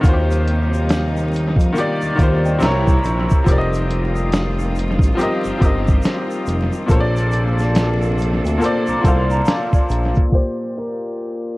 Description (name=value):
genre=lo-fi hip hop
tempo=70 BPM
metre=4/4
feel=swing 62% on 16ths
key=Bb major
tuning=A4 = 440 Hz
part: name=bright upright piano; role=accompaniment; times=0.0-11.6 s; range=Bb2 to F5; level=-21 LUFS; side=left 1 dB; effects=low-pass filter, analog delay
part: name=bright studio string section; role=sustained chords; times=0.0-10.3 s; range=C3 to A4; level=-28 LUFS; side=right 1 dB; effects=low-pass filter
part: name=smooth synth bass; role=bass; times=0.0-10.1 s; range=F1 to F2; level=-19 LUFS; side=equal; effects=none
part: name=lo-fi sampler-style drum kit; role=drums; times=0.0-11.4 s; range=hi-hat, kick drum, snare drum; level=-17 LUFS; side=equal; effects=analog delay
part: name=tube shaker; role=percussion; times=0.0-10.3 s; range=none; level=-46 LUFS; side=right 4 dB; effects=none
part: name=large celesta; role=second line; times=2.4-3.4, 8.9-10.3 s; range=D5 to D6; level=-26 LUFS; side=right 2 dB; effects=low-pass filter, analog delay
part: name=felt-muted upright piano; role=melody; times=10.3-11.6 s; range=Bb4 to C5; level=-26 LUFS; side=left 1 dB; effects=low-pass filter, analog delay
room=light reverb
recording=echo-heavy mix, vinyl crackle, low-pass filter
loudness=-15 LUFS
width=side -20 dB against mid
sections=0.0-10.3 A section; 10.3-11.6 B section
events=filter sweep 10.3-11.6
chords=0.0 Eb6; 2.6 C7b9; 3.5 F9sus4; 6.9 Bbmaj9; 10.3 Bb69